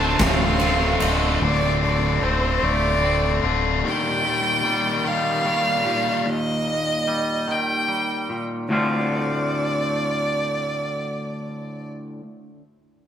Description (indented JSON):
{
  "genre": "post-rock",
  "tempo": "50 BPM (dotted quarters)",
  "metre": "6/8",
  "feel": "straight",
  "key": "D phrygian",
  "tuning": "A4 = 438 Hz",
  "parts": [
    { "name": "clear violin", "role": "melody", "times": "0.0-11.9 s", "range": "C5 to A5", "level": "-24 LUFS", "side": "right 2 dB", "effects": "none" },
    { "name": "twangy electric guitar", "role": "arpeggios", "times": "0.0-12.2 s", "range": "D2 to F4", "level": "-26 LUFS", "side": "left 1 dB", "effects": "warbly pitch drift, analog delay" },
    { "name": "cranked stack guitar", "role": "riff", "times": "0.0-6.3 s", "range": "D2 to G4", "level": "-24 LUFS", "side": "left 6 dB", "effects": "overdrive, spring reverb" },
    { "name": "sludgy distorted guitar", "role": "riff", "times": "0.0-1.4 s", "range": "D2 to F4", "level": "-27 LUFS", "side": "right 6 dB", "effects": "overdrive" },
    { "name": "fingered electric bass", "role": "bass", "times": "0.0-3.8 s", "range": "D1", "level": "-24 LUFS", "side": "equal", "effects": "none" },
    { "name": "huge arena drum kit", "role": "drums", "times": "0.2-1.2 s", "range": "kick drum, ride cymbal, snare drum", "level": "-26 LUFS", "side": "right 1 dB", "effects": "none" }
  ],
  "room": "wet stone room reverb, RT60 1.2 s",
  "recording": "band playing live in one room",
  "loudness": "-19 LUFS",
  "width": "side -9 dB against mid",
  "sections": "0.0-8.7 A section; 8.7-11.1 B section",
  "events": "none",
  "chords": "0.0 Dm7; 3.8 Eb; 8.7 Dm7"
}